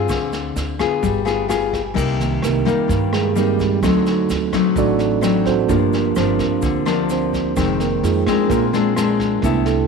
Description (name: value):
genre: bossa nova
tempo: 129 BPM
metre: 4/4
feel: straight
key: C minor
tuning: A4 = 440 Hz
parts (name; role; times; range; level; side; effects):
- nylon-string guitar; accompaniment; 0.0-9.9 s; F2 to A4; -20 LUFS; left 10 dB; none
- upright bass; bass; 0.0-9.9 s; F1 to G2; -24 LUFS; right 2 dB; none
- vintage brush drum kit; drums; 0.1-9.7 s; crash cymbal, kick drum, rim click, snare drum; -27 LUFS; right 2 dB; none
- egg shaker; percussion; 0.1-9.9 s; none; -42 LUFS; right 16 dB; none
- mellow tine electric piano; accompaniment; 1.3-9.9 s; Eb3 to Ab5; -20 LUFS; right 12 dB; none
room: moderate plate reverb, RT60 1.6 s, studio ambience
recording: 1960s-style stereo with parts hard left and right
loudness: -16 LUFS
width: side -5 dB against mid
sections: 0.0-2.0 A section; 2.0-9.9 B section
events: tine electric piano solo 2.0-9.9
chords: 0.1 Dm7b5; 1.0 G7b9; 2.0 Cm7; 3.8 D7b9; 5.7 Gm7; 7.6 Fm7; 8.5 Bb9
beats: | 0.10 0.56 1.03 1.50 | 1.97 2.43 2.90 3.37 | 3.83 4.30 4.77 5.24 | 5.70 6.17 6.63 7.10 | 7.57 8.03 8.50 8.97 | 9.43